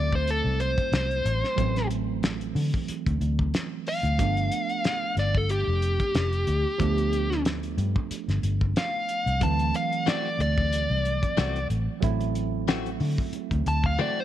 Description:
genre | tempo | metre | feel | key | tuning
straight-eighth soul blues | 92 BPM | 4/4 | swing 55% on 16ths | D mixolydian | A4 = 441 Hz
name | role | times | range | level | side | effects
dark smooth lead guitar | melody | 0.0-14.2 s | G4 to A5 | -28 LUFS | left 1 dB | overdrive
tine electric piano | accompaniment | 0.0-14.2 s | E3 to E4 | -32 LUFS | right 12 dB | overdrive
vintage muted fingered electric bass | bass | 0.0-14.0 s | F1 to D3 | -26 LUFS | left 1 dB | none
cloth-damped thuddy drum kit | drums | 0.1-14.2 s | hi-hat, kick drum, snare drum, toms | -29 LUFS | left 1 dB | none
direct-recorded clean electric guitar | stabs | 10.1-14.2 s | E3 to F#4 | -32 LUFS | left 12 dB | warbly pitch drift
room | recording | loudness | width
small room reverb | 1960s-style stereo with parts hard left and right | -23 LUFS | side -12 dB against mid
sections
0.0-14.2 A section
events
drum fill 14.0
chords
0.0 D9; 4.2 G9; 9.4 D9

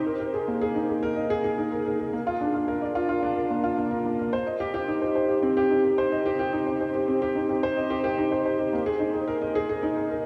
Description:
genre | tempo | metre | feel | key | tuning
electronica | 109 BPM | 4/4 | straight | C minor | A4 = 443 Hz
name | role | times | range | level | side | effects
dark baby grand piano | solo | 0.0-10.3 s | Bb3 to Eb5 | -26 LUFS | equal | subtle chorus, tape echo
room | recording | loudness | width
wet huge ambient reverb, RT60 7.6 s | dreamy mix soaked in reverb | -26 LUFS | mono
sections
0.0-10.3 A section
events
none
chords
none

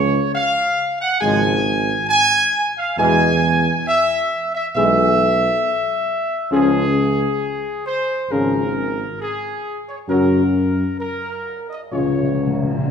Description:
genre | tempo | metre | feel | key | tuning
classical | 68 BPM | 4/4 | straight | unclear | A4 = 440 Hz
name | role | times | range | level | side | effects
warm trumpet section | melody | 0.0-12.8 s | Ab4 to Ab5 | -19 LUFS | equal | none
mellow tuba | bass | 0.0-12.7 s | Ab1 to Gb2 | -21 LUFS | right 2 dB | none
timpani | percussion | 0.0-0.7, 11.9-12.9 s | Db3 | -24 LUFS | left 2 dB | none
clear trombone section | sustained chords | 1.2-12.3 s | B2 to Ab3 | -27 LUFS | right 2 dB | none
warm French horn section | sustained chords | 1.2-12.9 s | Ab3 to Ab4 | -22 LUFS | left 4 dB | none
room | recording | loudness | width
wet scoring stage reverb, RT60 1.6 s | minimal, uncompressed stereo recording | -16 LUFS | side -7 dB against mid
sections
0.0-12.9 A section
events
timpani fill 11.9-12.9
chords
0.0 Db; 3.0 E; 6.5 Db; 10.1 Gb; 11.9 Db

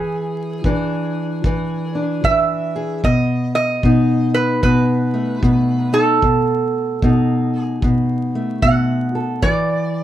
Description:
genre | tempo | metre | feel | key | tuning
acoustic country blues, solo or duo | 75 BPM | 4/4 | swing 63% on 8ths | unclear | A4 = 440 Hz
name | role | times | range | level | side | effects
metal-body resonator slide guitar | melody | 0.0-10.0 s | G#4 to F#5 | -20 LUFS | right 4 dB | none
fingerpicked steel-string acoustic guitar | accompaniment | 0.0-10.0 s | B2 to A4 | -18 LUFS | left 1 dB | none
kick drum | drums | 0.6-9.7 s | none | -21 LUFS | equal | none
room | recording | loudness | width
light reverb | vinyl crackle | -15 LUFS | side -12 dB against mid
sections
0.0-10.0 A section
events
none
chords
0.0 E7; 3.0 B7; 9.4 E7(no3)

